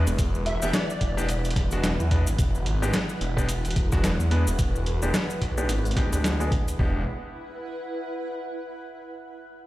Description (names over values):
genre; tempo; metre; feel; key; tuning
glitch hop; 109 BPM; 4/4; swing 59% on 16ths; unclear; A4 = 440 Hz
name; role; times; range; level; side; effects
bright grand piano; stabs; 0.0-7.0 s; G#3 to B4; -32 LUFS; equal; sidechain pumping, low-pass filter, dub echo
phased detuned saw bass; bass; 0.0-7.0 s; E1 to E2; -25 LUFS; equal; phaser, overdrive
granular cloud pad; texture; 0.0-9.0 s; E4 to F#5; -35 LUFS; right 1 dB; built-in reverb, sidechain pumping
boom bap sampler-style drum kit; drums; 0.1-6.8 s; hi-hat, snare drum; -29 LUFS; equal; none
cabasa; percussion; 0.1-6.8 s; none; -39 LUFS; left 2 dB; none
electronic kick drum; drums; 0.2-6.9 s; none; -25 LUFS; equal; none
plucky unison lead; melody; 0.5-1.2 s; D5 to E5; -34 LUFS; equal; ensemble chorus, dub echo
room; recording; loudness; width
light reverb, digital ambience; played on a big sound system in a bare room, stone room reverb; -23 LUFS; side -16 dB against mid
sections
0.0-6.8 A section; 6.8-9.0 B section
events
filter sweep on grand piano 0.0-6.8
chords
0.0 E7#9; 6.8 E5